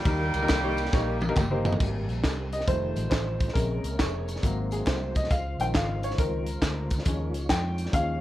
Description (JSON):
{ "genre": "uptempo gospel", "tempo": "137 BPM", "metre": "4/4", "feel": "swing 66% on 8ths", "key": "Ab major", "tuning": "A4 = 440 Hz", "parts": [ { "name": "mellow horn section", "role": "melody", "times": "0.0-1.3 s", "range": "G3 to G4", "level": "-31 LUFS", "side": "right 2 dB", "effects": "tape echo" }, { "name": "mellow tonewheel organ", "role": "sustained chords", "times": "0.0-8.2 s", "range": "Db3 to Db5", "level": "-38 LUFS", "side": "right 2 dB", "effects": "slow rotary speaker, chorus vibrato" }, { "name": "warm upright piano", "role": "accompaniment", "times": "0.1-8.2 s", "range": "C3 to G5", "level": "-30 LUFS", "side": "left 2 dB", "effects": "none" }, { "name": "vintage muted fingered electric bass", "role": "bass", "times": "0.1-8.2 s", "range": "F1 to F2", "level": "-31 LUFS", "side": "equal", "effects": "transformer saturation" }, { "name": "crisp fusion drum kit", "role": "drums", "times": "0.1-8.1 s", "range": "crash cymbal, hi-hat, kick drum, ride cymbal, snare drum, toms", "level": "-27 LUFS", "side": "equal", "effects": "none" }, { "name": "tambourine and handclaps", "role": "percussion", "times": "0.1-8.1 s", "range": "none", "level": "-41 LUFS", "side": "right 1 dB", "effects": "none" } ], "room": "little or no reverb", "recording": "worn, warbling old tape, cassette tape, warbly pitch drift", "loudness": "-24 LUFS", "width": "side -14 dB against mid", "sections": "0.0-1.8 A section; 1.8-8.2 B section", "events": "drum fill 0.9-1.8; upright piano fill 1.2-1.8; upright piano solo 1.8-8.2", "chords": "0.1 Eb; 1.8 Abmaj9; 2.7 F7; 3.6 Bbm9; 4.4 Ab7; 5.3 Dbmaj7; 7.1 Eb9sus4", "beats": "| 0.06 0.50 0.93 1.37 | 1.81 2.25 2.68 3.12 | 3.56 4.00 4.43 4.87 | 5.31 5.75 6.19 6.62 | 7.06 7.50 7.94" }